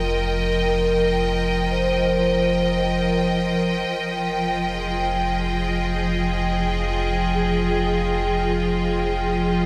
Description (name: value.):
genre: ambient.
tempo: 69 BPM.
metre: 4/4.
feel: straight.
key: F minor.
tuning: A4 = 441 Hz.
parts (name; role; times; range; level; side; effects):
clear symphonic string section; sustained chords; 0.0-9.7 s; F3 to G5; -25 LUFS; equal; none.
vibraphone with medium mallets; arpeggios; 0.0-9.7 s; Ab4 to C5; -28 LUFS; equal; tape echo.
warm sub bass; bass; 0.0-9.7 s; F1; -30 LUFS; equal; none.
organ-like drone; drone; 0.0-9.7 s; F3 to F4; -32 LUFS; equal; ensemble chorus, built-in reverb.
glass harmonica; texture; 0.0-9.7 s; Bb4 to G5; -31 LUFS; equal; none.
room: wet lush hall reverb, RT60 2.6 s.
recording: none.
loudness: -22 LUFS.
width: mono.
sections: 0.0-9.7 A section.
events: none.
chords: 0.0 Eb/F; 3.9 Fm9.